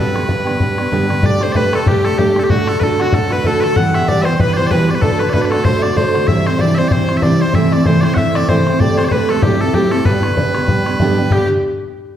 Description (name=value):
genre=celtic folk, Celtic reel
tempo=191 BPM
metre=4/4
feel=swing 57% on 8ths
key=G major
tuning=A4 = 440 Hz
part: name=loud bright bagpipes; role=melody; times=0.0-11.5 s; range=F#4 to F#5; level=-20 LUFS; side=equal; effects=none
part: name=warm fiddle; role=second line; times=0.0-11.5 s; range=F#4 to F#5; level=-21 LUFS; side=left 2 dB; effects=none
part: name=picked steel-string acoustic guitar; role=accompaniment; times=0.0-11.5 s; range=E2 to G4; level=-16 LUFS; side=right 2 dB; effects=none
part: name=bodhran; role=percussion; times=0.2-11.5 s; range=none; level=-18 LUFS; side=left 1 dB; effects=none
room=wet recital hall reverb, RT60 1.4 s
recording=heard from further back in the room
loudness=-12 LUFS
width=side -10 dB against mid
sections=0.0-1.2 A section; 1.2-11.3 A section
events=none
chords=0.0 G; 1.2 Gsus2; 2.5 D; 3.8 Em; 5.0 D; 6.3 C; 7.5 Am/C; 8.8 D7sus4; 9.4 F#m7b5; 10.1 G